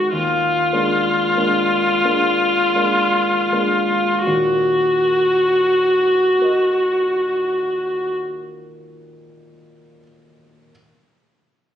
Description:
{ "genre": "classical, romantic duo for viola and grand piano", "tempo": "25-35 BPM (dotted quarters)", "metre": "6/8", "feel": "rubato", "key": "Eb minor", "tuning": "A4 = 440 Hz", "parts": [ { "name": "rich viola", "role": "melody", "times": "0.0-8.1 s", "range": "F4 to Gb4", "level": "-16 LUFS", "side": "left 1 dB", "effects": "none" }, { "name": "clear baby grand piano", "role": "accompaniment", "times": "0.0-10.7 s", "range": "Eb2 to Eb5", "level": "-25 LUFS", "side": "right 2 dB", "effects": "none" } ], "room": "wet recital hall reverb, RT60 1.3 s", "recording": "recorded on a phone in the room, studio reverb, compression", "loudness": "-15 LUFS", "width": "side -9 dB against mid", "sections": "0.0-4.3 A section; 4.3-8.5 B section", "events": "slowing down 0.0-4.3", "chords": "0.1 Bb7/Eb; 4.3 Ebm" }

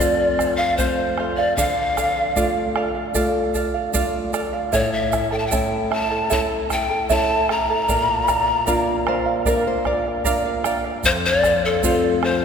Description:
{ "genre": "andean folk, Andean ensemble", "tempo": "76 BPM", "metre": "4/4", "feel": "straight", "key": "D minor", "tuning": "A4 = 440 Hz", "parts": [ { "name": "breathy mellow pan flute", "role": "melody", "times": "0.0-12.4 s", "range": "A4 to Bb5", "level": "-20 LUFS", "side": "left 2 dB", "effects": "none" }, { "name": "charango", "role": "accompaniment", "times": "0.0-12.4 s", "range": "E4 to A5", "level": "-24 LUFS", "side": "right 4 dB", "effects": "none" }, { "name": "nylon-string guitar", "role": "accompaniment", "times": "0.0-12.4 s", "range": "F2 to G5", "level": "-25 LUFS", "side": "left 2 dB", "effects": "none" }, { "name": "egg shaker", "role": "percussion", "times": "0.0-12.0 s", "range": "none", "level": "-32 LUFS", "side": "right 8 dB", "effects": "none" }, { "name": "bombo", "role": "percussion", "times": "0.4-12.4 s", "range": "none", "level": "-28 LUFS", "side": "right 1 dB", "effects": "none" } ], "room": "wet cathedral reverb, RT60 4.5 s", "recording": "recorded in a church or concert hall", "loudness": "-18 LUFS", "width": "side -7 dB against mid", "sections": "0.0-12.4 A section", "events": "nylon-string guitar fill 8.7-11.0", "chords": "0.0 F; 1.6 Dm; 4.7 A; 7.9 Bb; 11.0 F" }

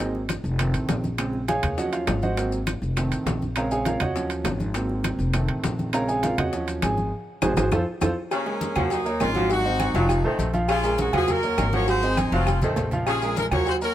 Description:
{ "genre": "latin, salsa", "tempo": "202 BPM", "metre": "4/4", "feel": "straight", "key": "Bb minor", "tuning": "A4 = 438 Hz", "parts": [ { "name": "clear grand piano", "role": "accompaniment", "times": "0.0-13.9 s", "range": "Db3 to Bb5", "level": "-26 LUFS", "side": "right 2 dB", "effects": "none" }, { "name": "upright bass", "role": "bass", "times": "0.0-13.9 s", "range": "F1 to F2", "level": "-27 LUFS", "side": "equal", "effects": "none" }, { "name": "bongos and cowbell", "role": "percussion", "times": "0.0-13.8 s", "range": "none", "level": "-35 LUFS", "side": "left 6 dB", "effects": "none" }, { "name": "congas", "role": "percussion", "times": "0.0-13.9 s", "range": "none", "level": "-31 LUFS", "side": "equal", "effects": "none" }, { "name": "maracas", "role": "percussion", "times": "0.0-13.9 s", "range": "none", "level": "-42 LUFS", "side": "left 7 dB", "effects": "none" }, { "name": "claves", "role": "percussion", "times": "0.3-13.7 s", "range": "none", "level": "-35 LUFS", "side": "left 6 dB", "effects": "none" }, { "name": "timbales and agogo bells", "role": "percussion", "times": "0.3-13.8 s", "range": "none", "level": "-31 LUFS", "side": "right 4 dB", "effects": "none" }, { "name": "clear horn section", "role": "melody", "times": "8.3-13.9 s", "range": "Bb3 to Db5", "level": "-27 LUFS", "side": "left 1 dB", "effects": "none" }, { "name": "mellow saxophone section", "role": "second line", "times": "8.3-13.8 s", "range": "Db3 to Gb3", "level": "-31 LUFS", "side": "left 2 dB", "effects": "none" } ], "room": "light reverb", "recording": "none", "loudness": "-21 LUFS", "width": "side -12 dB against mid", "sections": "0.0-8.3 A section; 8.3-13.9 B section", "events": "grand piano solo 0.0-8.3; drum fill 7.1-8.3, 12.2-13.1; band accent 7.1-8.3", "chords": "0.0 Ab7; 0.6 F7; 1.2 Bbm7; 1.8 Ebm7; 2.4 Ab7; 3.0 F7; 3.6 Bbm7; 4.2 Ebm7; 4.8 Ab7; 5.3 F7; 5.9 Bbm7; 6.5 Ebm7; 7.1 Ab7; 7.7 F; 8.3 Bbm7; 8.9 Ebm7; 9.5 Ab7; 10.1 F7; 10.7 Bbm7; 11.3 Ebm7; 11.9 Ab7; 12.5 F7; 13.1 Bbm7" }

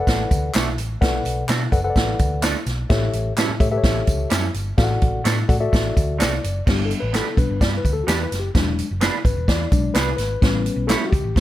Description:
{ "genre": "uptempo 1960s-style soul", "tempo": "128 BPM", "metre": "4/4", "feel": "straight", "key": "G major", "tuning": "A4 = 439 Hz", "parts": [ { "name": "mellow reed electric piano", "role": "accompaniment", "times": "0.0-11.4 s", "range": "A2 to F#5", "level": "-24 LUFS", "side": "left 4 dB", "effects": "none" }, { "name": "hollow-body short-scale picked electric bass", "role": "bass", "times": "0.1-11.4 s", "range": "E1 to B2", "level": "-24 LUFS", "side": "equal", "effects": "none" }, { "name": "swinging big-band drum kit", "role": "drums", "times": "0.1-11.4 s", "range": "crash cymbal, hi-hat, kick drum, snare drum", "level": "-20 LUFS", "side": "equal", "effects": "none" }, { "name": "tambourine and handclaps", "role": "percussion", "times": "0.1-11.4 s", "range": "none", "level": "-32 LUFS", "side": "left 1 dB", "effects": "none" }, { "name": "electric guitar through a small old amp", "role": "stabs", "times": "0.5-11.0 s", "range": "G3 to C#5", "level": "-28 LUFS", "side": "right 7 dB", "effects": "lush chorus, tape echo" } ], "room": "studio ambience", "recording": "none", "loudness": "-18 LUFS", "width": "side -14 dB against mid", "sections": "0.0-6.7 A section; 6.7-11.4 B section", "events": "reed electric piano fill 6.0-6.7; reed electric piano solo 6.7-11.4", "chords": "0.0 Bm7; 2.9 A7; 4.8 D/A; 6.7 G; 8.5 E7; 10.4 A7" }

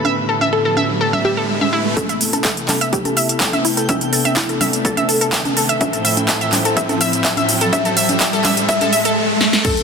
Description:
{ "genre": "progressive house", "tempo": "125 BPM", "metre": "4/4", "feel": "straight", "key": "A minor", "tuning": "A4 = 440 Hz", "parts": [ { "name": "wide unison pluck", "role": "melody", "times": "0.0-9.8 s", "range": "E4 to E5", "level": "-23 LUFS", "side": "left 1 dB", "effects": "ping-pong delay" }, { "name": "warm analog pad", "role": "sustained chords", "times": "0.0-9.8 s", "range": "A2 to B4", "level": "-23 LUFS", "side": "left 2 dB", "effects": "chorus, sidechain pumping" }, { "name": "analog pluck", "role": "arpeggios", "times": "0.0-9.7 s", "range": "E4 to E5", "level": "-20 LUFS", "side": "equal", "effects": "chorus, sidechain pumping, ping-pong delay" }, { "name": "congas", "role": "percussion", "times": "0.0-9.7 s", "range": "none", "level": "-24 LUFS", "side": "right 2 dB", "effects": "overdrive, sidechain pumping on perc" }, { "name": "riser and impact", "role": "sound effects", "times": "0.0-9.8 s", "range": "none", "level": "-23 LUFS", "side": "right 2 dB", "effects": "none" }, { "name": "backwards swelling texture", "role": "texture", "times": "0.0-9.2 s", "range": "G5 to B5", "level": "-32 LUFS", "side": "equal", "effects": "none" }, { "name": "big-room dance drum kit", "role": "drums", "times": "2.0-9.8 s", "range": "crash cymbal, handclaps, hi-hat, shaker, snare drum", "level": "-18 LUFS", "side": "right 1 dB", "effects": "none" }, { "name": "electronic kick drum", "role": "drums", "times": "2.0-9.7 s", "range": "none", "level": "-25 LUFS", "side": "equal", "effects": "overdrive, high-pass filter on kick, high-pass filter on room" }, { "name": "tambourine", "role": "drums", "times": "9.6-9.8 s", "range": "none", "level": "-32 LUFS", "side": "right 2 dB", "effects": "none" } ], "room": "moderate lush hall reverb, RT60 2.1 s", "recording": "dense, heavily limited modern master", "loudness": "-14 LUFS", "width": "side -5 dB against mid", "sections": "0.0-2.0 A section; 2.0-9.6 B section", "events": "riser 0.0-2.0, 2.0-9.6; build-up 2.0-9.6; filter sweep on synth pluck 2.0-9.6; drum fill 9.4; impact 9.6", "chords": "0.0 Gadd9/A; 2.0 Amadd9; 5.8 Fmaj7/A" }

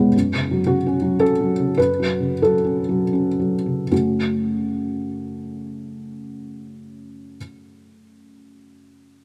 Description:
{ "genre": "neoclassical minimalist piano", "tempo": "72-117 BPM", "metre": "3/4", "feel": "rubato", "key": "F# minor", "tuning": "A4 = 440 Hz", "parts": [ { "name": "felt-muted upright piano", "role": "solo", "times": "0.0-9.2 s", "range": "E2 to C#5", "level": "-22 LUFS", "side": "equal", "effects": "none" } ], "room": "moderate plate reverb, RT60 3.4 s", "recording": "none", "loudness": "-20 LUFS", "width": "mono", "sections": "0.0-3.9 A section; 3.9-8.6 B section", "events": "slowing down 0.0-3.9", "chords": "0.1 F#m" }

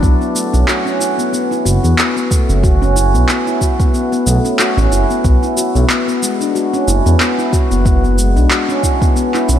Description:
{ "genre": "organic downtempo", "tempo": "92 BPM", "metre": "4/4", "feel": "swing 56% on 16ths", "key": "unclear", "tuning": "A4 = 440 Hz", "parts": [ { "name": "handpan", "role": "arpeggios", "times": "0.0-9.6 s", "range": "G#3 to F#4", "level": "-15 LUFS", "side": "left 1 dB", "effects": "digital delay" }, { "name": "smooth synth bass", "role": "bass", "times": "0.0-9.6 s", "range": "F#1 to E2", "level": "-13 LUFS", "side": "equal", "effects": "sidechain pumping" }, { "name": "electronic cabasa and handclaps", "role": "drums", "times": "0.0-9.6 s", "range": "none", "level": "-20 LUFS", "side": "equal", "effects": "none" }, { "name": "electronic kick drum", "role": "drums", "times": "0.0-9.1 s", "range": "none", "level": "-14 LUFS", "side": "equal", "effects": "none" } ], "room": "light reverb", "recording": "none", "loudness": "-12 LUFS", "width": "side -10 dB against mid", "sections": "0.0-9.6 A section", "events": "none", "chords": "0.0 A (rootless); 5.2 Esus2" }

